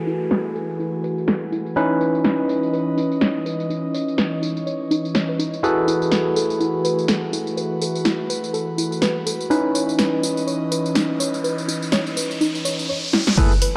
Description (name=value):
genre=deep house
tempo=124 BPM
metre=4/4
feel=swing 57% on 16ths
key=unclear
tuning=A4 = 440 Hz
part: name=airy breathy pad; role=sustained chords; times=0.0-13.8 s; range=E3 to G#5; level=-30 LUFS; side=equal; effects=chorus, sidechain pumping
part: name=overdriven tine electric piano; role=stabs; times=0.0-13.5 s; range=C#4 to B4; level=-26 LUFS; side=equal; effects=sidechain pumping, low-pass filter, digital delay
part: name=downlifter and riser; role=sound effects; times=0.0-1.8, 10.8-13.4 s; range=none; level=-32 LUFS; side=equal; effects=none
part: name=soft round pluck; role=arpeggios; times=0.1-13.7 s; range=D#4 to C#5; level=-29 LUFS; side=equal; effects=chorus, sidechain pumping, dub echo
part: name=punchy analog drum machine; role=drums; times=0.1-13.7 s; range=crash cymbal, hi-hat, snare drum, tambourine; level=-26 LUFS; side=equal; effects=overdrive, low-pass filter on hats, low-pass filter on snare, low-pass filter on perc, low-pass filter on cymbals
part: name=modern bright fingered electric bass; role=bass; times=13.4-13.5 s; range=F#1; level=-27 LUFS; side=equal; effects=sidechain pumping
part: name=electronic kick drum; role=drums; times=13.4-13.5 s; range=none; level=-19 LUFS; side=equal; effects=none
part: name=congas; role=percussion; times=13.4-13.5 s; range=none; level=-33 LUFS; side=equal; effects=none
room=moderate lush hall reverb, RT60 1.9 s, digital ambience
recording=dark, warm production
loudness=-21 LUFS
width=mono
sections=0.0-13.4 A section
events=filter sweep on drum 0.0-13.4; filter sweep on tine electric piano 0.0-13.4; filter sweep on analog synth pad 0.0-13.4; filter sweep on synth arpeggio sound 0.0-13.4; riser 10.8-13.4; drum fill 13.1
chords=0.0 F#m11; 1.8 C#m9; 5.6 F#m11; 9.5 C#m9